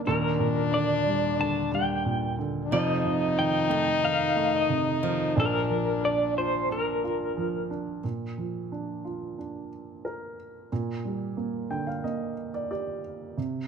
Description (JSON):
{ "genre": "acoustic folk-pop ballad", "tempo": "90 BPM", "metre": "4/4", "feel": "straight", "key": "Bb major", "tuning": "A4 = 440 Hz", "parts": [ { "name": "dark baby grand piano", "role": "accompaniment", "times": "0.0-13.7 s", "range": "Eb1 to G5", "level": "-30 LUFS", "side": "right 3 dB", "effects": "none" }, { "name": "electric guitar through a small old amp", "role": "melody", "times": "0.1-7.7 s", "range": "Bb4 to A5", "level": "-28 LUFS", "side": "equal", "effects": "tremolo" }, { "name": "clear French horn", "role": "second line", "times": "0.1-7.7 s", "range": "D4 to Eb4", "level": "-28 LUFS", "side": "left 5 dB", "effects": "slapback echo" }, { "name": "picked plugged-in swing-style acoustic guitar", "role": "arpeggios", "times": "2.7-5.7 s", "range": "Eb3 to F3", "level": "-34 LUFS", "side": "right 5 dB", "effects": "none" } ], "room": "moderate large studio reverb, RT60 1.5 s", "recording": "close, detailed microphones", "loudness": "-25 LUFS", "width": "side -6 dB against mid", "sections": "0.0-8.0 A section; 8.0-13.7 B section", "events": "none", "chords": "0.1 Ebmaj7; 2.7 F7; 5.4 Bb; 10.7 Gm/Bb", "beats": "| 0.05 0.72 1.38 2.04 | 2.71 3.37 4.03 4.70 | 5.36 6.03 6.69 7.37 | 8.04 8.71 9.37 10.04 | 10.71 11.38 12.04 12.71 | 13.37" }